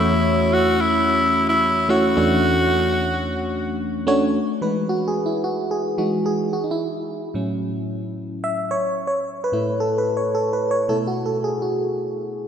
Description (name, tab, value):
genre	pop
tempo	110 BPM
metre	4/4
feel	straight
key	E major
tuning	A4 = 440 Hz
part	raspy tenor saxophone	melody	0.0-3.8 s	E4 to F#4	-20 LUFS	equal	tape echo
part	FM electric piano	accompaniment	0.0-12.5 s	E2 to E5	-20 LUFS	equal	chorus
room	wet lush hall reverb, RT60 3.0 s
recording	dreamy mix soaked in reverb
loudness	-19 LUFS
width	side -8 dB against mid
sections	0.0-4.3 A section; 4.3-12.5 B section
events	FM electric piano solo 4.3-12.5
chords	0.0 A6/E; 2.2 Dmaj7/E; 4.3 Emaj7; 6.5 A6; 8.7 Aadd9; 10.9 B7sus4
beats	0.53 1.07 1.62 | 2.17 2.71 3.26 3.80 | 4.35 4.89 5.44 5.98 | 6.53 7.07 7.62 8.16 | 8.71 9.26 9.80 10.35 | 10.89 11.44 11.98